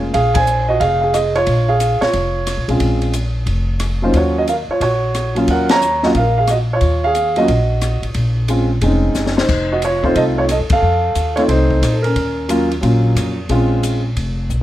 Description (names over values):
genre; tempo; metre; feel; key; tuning
jazz piano trio; 180 BPM; 4/4; swing 64% on 8ths; Bb minor; A4 = 440 Hz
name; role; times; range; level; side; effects
warm concert grand piano; melody; 0.0-14.0 s; Gb3 to Bb5; -16 LUFS; right 1 dB; none
upright bass; bass; 0.0-14.6 s; F1 to Bb2; -18 LUFS; equal; none
compact cocktail drum kit; drums; 0.1-14.6 s; crash cymbal, hi-hat, kick drum, ride cymbal, rim click, snare drum; -24 LUFS; left 2 dB; none
room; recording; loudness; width
light reverb; faint mains hum; -14 LUFS; side -14 dB against mid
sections
0.0-14.6 A section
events
band accent 0.3, 5.6, 10.7; drum fill 9.2-9.5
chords
0.0 Bbm7; 4.1 Ebm7; 8.2 Bbm7; 9.5 F7; 12.2 Ebm7; 13.5 Bbm7